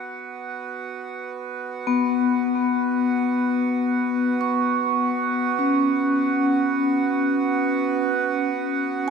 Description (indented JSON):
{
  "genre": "ambient",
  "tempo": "free time",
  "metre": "none",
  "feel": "none",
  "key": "unclear",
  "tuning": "A4 = 441 Hz",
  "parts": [
    { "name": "hand-pumped harmonium", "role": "drone", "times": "0.0-9.1 s", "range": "B3 to F#4", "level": "-26 LUFS", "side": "right 7 dB", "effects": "none" },
    { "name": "vibraphone with medium mallets", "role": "arpeggios", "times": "1.9-9.1 s", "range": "B3 to C#6", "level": "-21 LUFS", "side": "left 2 dB", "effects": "tape echo" }
  ],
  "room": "wet huge ambient reverb, RT60 7.9 s",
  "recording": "none",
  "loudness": "-20 LUFS",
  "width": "side -6 dB against mid",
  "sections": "0.0-9.1 A section",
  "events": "fade-in on harmonium 0.0-9.1",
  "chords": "0.0 B5; 1.8 Bsus2",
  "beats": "free time"
}